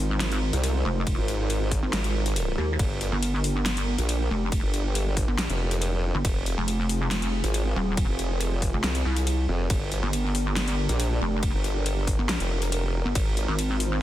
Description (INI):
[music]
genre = heavy wobble dubstep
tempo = 139 BPM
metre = 4/4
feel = half-time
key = G phrygian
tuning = A4 = 439 Hz
[part]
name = supersaw pad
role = sustained chords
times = 0.0-14.0 s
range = Ab3 to C5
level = -33 LUFS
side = right 1 dB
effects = sidechain pumping, low-pass filter
[part]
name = pulsing pluck wobble bass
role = bass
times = 0.0-14.0 s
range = Eb1 to Eb2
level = -25 LUFS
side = equal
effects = chorus, overdrive
[part]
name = dubstep drum kit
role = drums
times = 0.2-13.9 s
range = hi-hat, ride cymbal, snare drum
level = -31 LUFS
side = equal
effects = none
[part]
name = formant-sweep wobble bass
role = bass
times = 0.5-13.5 s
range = F1 to C2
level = -26 LUFS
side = equal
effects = chorus, overdrive
[part]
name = electronic kick drum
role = drums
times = 1.1-13.2 s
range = none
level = -27 LUFS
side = equal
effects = none
[sound]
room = digital ambience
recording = dense, heavily limited modern master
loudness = -23 LUFS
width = side -13 dB against mid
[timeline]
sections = 0.0-14.0 A section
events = none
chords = 0.0 Ab6; 2.8 Gm; 6.2 Fm; 9.7 Gm; 13.2 Ab6